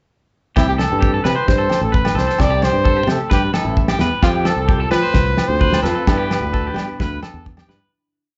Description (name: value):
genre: highlife guitar band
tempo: 131 BPM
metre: 4/4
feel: straight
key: C major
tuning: A4 = 440 Hz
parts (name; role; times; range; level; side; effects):
- mellow trumpet; melody; 0.6-7.4 s; E4 to D5; -23 LUFS; equal; none
- nylon-string guitar; accompaniment; 0.6-8.4 s; F2 to F4; -30 LUFS; equal; none
- electric guitar at the edge of break-up; arpeggios; 0.6-7.9 s; G4 to C5; -27 LUFS; equal; none
- modern bright fingered electric bass; bass; 0.6-7.8 s; A1 to G3; -23 LUFS; equal; none
- damped 70s drum kit; drums; 0.6-7.8 s; kick drum, snare drum; -21 LUFS; equal; none
- agogo bells; percussion; 0.6-7.7 s; none; -30 LUFS; equal; none
room: light reverb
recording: band playing live in one room, nothing above 7.8 kHz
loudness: -17 LUFS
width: mono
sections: 0.6-7.9 groove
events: fade-out 6.1-7.9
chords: 0.6 C6; 4.2 F; 6.1 G6